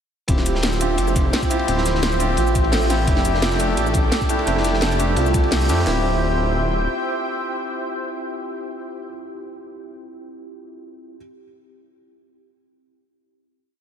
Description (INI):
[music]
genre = liquid drum and bass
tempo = 172 BPM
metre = 4/4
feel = straight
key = D minor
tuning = A4 = 440 Hz
[part]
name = barky tine electric piano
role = accompaniment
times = 0.3-11.2 s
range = F3 to E5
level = -25 LUFS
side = equal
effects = medium stereo tremolo, ping-pong delay
[part]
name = lush unison pad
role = sustained chords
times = 0.3-9.1 s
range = A4 to G5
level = -28 LUFS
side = equal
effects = chorus, sidechain pumping
[part]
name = felt-muted upright piano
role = arpeggios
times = 0.3-6.0 s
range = C4 to A4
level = -27 LUFS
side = right 3 dB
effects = ensemble chorus, analog delay
[part]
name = swelling detuned saw bass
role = bass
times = 0.3-6.9 s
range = D1 to F2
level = -22 LUFS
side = equal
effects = tube saturation
[part]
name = breakbeat sampler-style drum kit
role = drums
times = 0.3-6.0 s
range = handclaps, kick drum, snare drum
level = -21 LUFS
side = equal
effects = none
[part]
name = crunchy breakbeat drum kit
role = drums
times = 0.3-5.9 s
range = hi-hat, ride cymbal, snare drum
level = -31 LUFS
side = equal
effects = high-pass filter on cymbals, high-pass filter on hats, high-pass filter on snare, high-pass filter on room
[part]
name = drum and bass drum kit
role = drums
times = 0.3-5.8 s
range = hi-hat, rim click, shaker, snare drum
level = -26 LUFS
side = equal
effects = none
[sound]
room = moderate huge ambient reverb, RT60 4.5 s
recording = dreamy mix soaked in reverb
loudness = -18 LUFS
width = side -8 dB against mid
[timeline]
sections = 0.3-5.9 drop; 5.9-8.7 final chord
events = drop 0.3-5.9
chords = 0.3 Dm11; 3.1 Fmaj13; 5.9 Dm11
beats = | 0.28 0.63 0.98 1.33 | 1.68 2.03 2.38 2.73 | 3.08 3.42 3.77 4.12 | 4.47 4.82 5.17 5.52 | 5.87 6.21 6.56 6.91 | 7.26 7.61 7.96 8.31